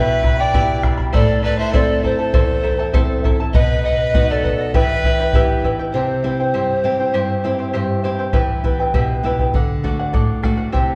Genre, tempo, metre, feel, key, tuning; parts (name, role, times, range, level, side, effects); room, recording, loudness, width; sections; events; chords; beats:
andean folk, Andean ensemble; 100 BPM; 2/4; straight; E minor; A4 = 439 Hz
breathy mellow polished pan flute; melody; 0.0-8.0 s; C5 to G5; -23 LUFS; equal; analog delay
rich violin; second line; 0.0-5.6 s; A4 to D5; -27 LUFS; equal
charango; accompaniment; 0.0-11.0 s; E4 to B5; -25 LUFS; equal
nylon-string guitar; accompaniment; 0.0-11.0 s; E2 to A4; -24 LUFS; equal
bombo; percussion; 0.2-5.8, 8.3-10.9 s; -21 LUFS; equal
wet recital hall reverb, RT60 1.7 s; heard from further back in the room; -18 LUFS; mono
0.0-5.9 A section; 5.9-10.7 B section
0.0 Em; 1.1 Am; 3.5 B; 4.7 Em; 5.9 C; 8.3 Em; 9.5 D
0.54 | 1.14 1.74 | 2.34 2.94 | 3.54 4.14 | 4.74 5.33 | 5.93 6.53 | 7.13 7.73 | 8.33 8.93 | 9.53 10.13 | 10.73